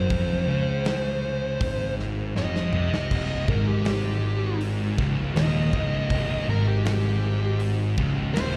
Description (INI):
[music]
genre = stoner and doom metal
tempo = 80 BPM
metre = 4/4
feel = straight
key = C minor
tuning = A4 = 438 Hz
[part]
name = fuzz lead guitar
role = melody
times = 0.0-8.5 s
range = G4 to Eb5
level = -33 LUFS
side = equal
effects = distortion, slapback echo, tape echo
[part]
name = thick fuzz guitar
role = riff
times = 0.0-8.6 s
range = C2 to Db3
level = -31 LUFS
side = equal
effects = distortion
[part]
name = thick fuzz guitar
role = riff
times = 0.0-8.6 s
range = C2 to Db3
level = -31 LUFS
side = equal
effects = distortion
[part]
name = fuzz picked electric bass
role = bass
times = 0.0-8.6 s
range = C1 to Db2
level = -32 LUFS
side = equal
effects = overdrive
[part]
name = big rock drum kit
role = drums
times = 0.1-8.5 s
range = crash cymbal, hi-hat, kick drum, snare drum, toms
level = -32 LUFS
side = equal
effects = none
[part]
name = high-gain distorted guitar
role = riff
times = 3.1-8.6 s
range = C2 to Ab2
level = -36 LUFS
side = equal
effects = distortion
[sound]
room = light reverb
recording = live gig heard through the venue's PA, recital hall reverb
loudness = -25 LUFS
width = mono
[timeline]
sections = 0.0-8.6 A section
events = lead electric guitar solo 0.0-8.6; drum fill 2.4-3.1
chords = 0.0 F5; 3.1 Cm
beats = | 0.10 0.85 1.60 2.35 | 3.10 3.85 4.60 5.36 | 6.11 6.86 7.61 8.36